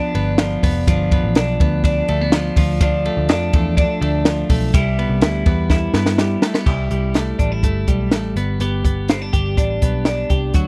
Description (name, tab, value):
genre	jangly indie pop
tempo	124 BPM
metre	4/4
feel	straight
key	C major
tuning	A4 = 441 Hz
part	twelve-string electric guitar	arpeggios	0.0-10.7 s	F3 to G4	-23 LUFS	equal	tape echo
part	vintage muted picked electric bass	bass	0.1-10.7 s	F1 to G2	-23 LUFS	equal	none
part	compact cocktail drum kit	drums	0.1-10.7 s	crash cymbal, hi-hat, kick drum, ride cymbal, snare drum	-20 LUFS	equal	none
room	little or no reverb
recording	dry, close 1970s-style studio recording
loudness	-18 LUFS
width	mono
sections	0.0-6.7 A section; 6.7-10.7 B section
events	drum fill 5.7-6.7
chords	0.0 G7; 2.6 Dm; 4.7 Cmaj7; 6.7 C6; 8.4 G